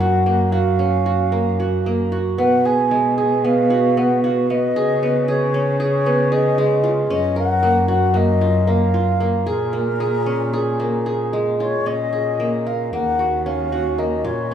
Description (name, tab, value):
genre	contemporary instrumental, chamber music in an uneven meter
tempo	228 BPM (eighths)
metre	9/8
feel	straight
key	Bb phrygian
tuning	A4 = 441 Hz
part	mellow baroque flute	melody	0.0-14.5 s	Bb4 to Ab5	-21 LUFS	left 1 dB	none
part	qanun	arpeggios	0.0-14.5 s	Ab3 to Bb4	-20 LUFS	right 2 dB	none
part	dark cello	bass	0.0-14.5 s	Eb2 to Db3	-22 LUFS	left 1 dB	none
room	wet recital hall reverb, RT60 1.8 s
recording	recorded in a church or concert hall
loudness	-16 LUFS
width	side -9 dB against mid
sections	0.0-11.9 A section; 11.9-14.5 B section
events	none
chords	0.0 Gbmaj7; 2.4 B5; 4.8 Db7(no3); 7.1 Gbmaj7; 9.5 Bbm7; 12.9 Ebm7